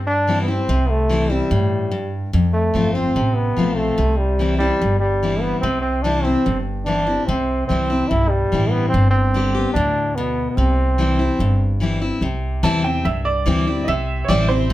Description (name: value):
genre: country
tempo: 146 BPM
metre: 4/4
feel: straight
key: C major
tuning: A4 = 438 Hz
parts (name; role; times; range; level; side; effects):
- picked steel-string acoustic guitar; accompaniment; 0.0-14.7 s; F2 to G4; -22 LUFS; left 3 dB; none
- upright bass; bass; 0.0-14.7 s; G1 to G2; -21 LUFS; right 1 dB; none
- bright trombone; melody; 0.1-11.8 s; G3 to E4; -20 LUFS; right 1 dB; none
- bright upright piano; second line; 12.6-14.7 s; C5 to A5; -22 LUFS; right 4 dB; none
room: light reverb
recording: none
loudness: -16 LUFS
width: side -15 dB against mid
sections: 0.0-12.2 A section; 12.2-14.7 B section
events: upright piano solo 12.2-14.7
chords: 0.0 C; 2.3 F; 4.0 C; 8.9 G; 10.6 C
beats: 0.27 | 0.69 1.10 1.51 1.92 | 2.33 2.75 3.16 3.57 | 3.98 4.39 4.81 5.22 | 5.63 6.04 6.46 6.87 | 7.28 7.69 8.11 8.52 | 8.93 9.34 9.76 10.17 | 10.58 10.99 11.40 11.82 | 12.23 12.64 13.05 13.47 | 13.88 14.29 14.71